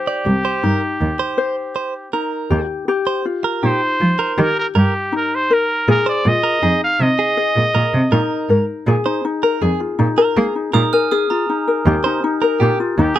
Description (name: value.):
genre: acoustic pop.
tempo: 80 BPM.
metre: 4/4.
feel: straight.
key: Eb major.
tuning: A4 = 440 Hz.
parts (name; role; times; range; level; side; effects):
clear trumpet; melody; 0.0-13.2 s; G4 to F5; -19 LUFS; right 1 dB; none.
ukulele; accompaniment; 0.0-13.2 s; Eb4 to C5; -20 LUFS; left 4 dB; none.
direct-recorded clean electric guitar; arpeggios; 0.1-13.2 s; G4 to D5; -22 LUFS; right 6 dB; none.
dark cello; bass; 0.3-13.1 s; C2 to Bb3; -17 LUFS; right 1 dB; none.
glockenspiel with hard plastic mallets; second line; 10.7-11.8 s; Ab5 to F6; -23 LUFS; right 5 dB; none.
room: little or no reverb.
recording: close, detailed microphones.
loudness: -15 LUFS.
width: side -12 dB against mid.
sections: 0.0-8.9 A section; 8.9-11.9 B section; 11.9-13.2 C section.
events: none.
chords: 0.0 Cm; 2.5 Ebadd9; 5.9 Bb7sus4; 11.9 Ebadd9.